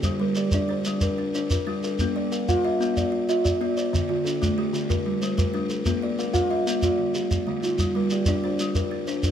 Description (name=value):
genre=southern african traditional, mbira-style interlocking cycle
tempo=124 BPM (dotted quarters)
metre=12/8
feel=straight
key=G equiheptatonic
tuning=A4 = 441 Hz
part: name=buzzing kalimba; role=arpeggios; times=0.0-9.3 s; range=D3 to F5+29c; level=-24 LUFS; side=left 2 dB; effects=none
part: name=kalimba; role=arpeggios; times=0.0-9.3 s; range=D3 to F5+29c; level=-30 LUFS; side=right 5 dB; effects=none
part: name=shekere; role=percussion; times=0.0-9.3 s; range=none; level=-27 LUFS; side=right 1 dB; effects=none
room=light reverb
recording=close, detailed microphones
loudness=-22 LUFS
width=side -9 dB against mid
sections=0.0-9.3 A section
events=none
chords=0.0 Gm; 2.0 Bb; 3.9 Dm; 4.9 Gm; 5.9 Bb; 6.8 Dm; 7.8 Gm